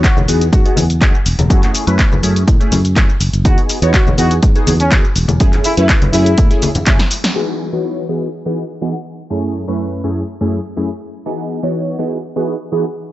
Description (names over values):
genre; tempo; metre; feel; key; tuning
filtered disco house; 123 BPM; 4/4; straight; unclear; A4 = 442 Hz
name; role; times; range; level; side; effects
mellow horn section; melody; 0.0-6.5 s; C#4 to F#4; -21 LUFS; equal; sidechain pumping, low-pass filter, analog delay
funky polysynth comp; accompaniment; 0.0-12.8 s; F#2 to C#5; -19 LUFS; equal; chorus, phaser, sidechain pumping, low-pass filter
electronic kick drum; drums; 0.0-7.0 s; none; -13 LUFS; equal; none
punchy analog drum machine; drums; 0.0-7.3 s; handclaps, hi-hat, shaker, snare drum; -19 LUFS; equal; sidechain pumping on hats, sidechain pumping on perc
tambourine and congas; percussion; 0.0-7.3 s; none; -21 LUFS; left 3 dB; sidechain pumping on perc, low-pass filter on perc
fingered electric bass; bass; 0.2-7.0 s; E1 to A2; -15 LUFS; equal; tube saturation, sidechain pumping, low-pass filter
room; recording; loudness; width
digital ambience; dry, gritty hardware recording, nothing above 7.9 kHz; -12 LUFS; side -15 dB against mid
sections
0.0-7.4 A section; 7.4-13.1 B section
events
filter sweep 0.0-7.4; drum fill 7.0-7.4; band accent 7.2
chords
0.0 Emaj7; 1.5 F#m7; 3.5 Emaj7; 5.4 F#m7; 7.4 Emaj7; 9.3 F#m7; 11.3 Emaj7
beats
0.04 0.53 1.01 | 1.50 1.99 2.48 2.96 | 3.45 3.94 4.43 4.92 | 5.40 5.89 6.38 6.87 | 7.36 7.84 8.33 8.82 | 9.31 9.79 10.28 10.77 | 11.26 11.75 12.23 12.72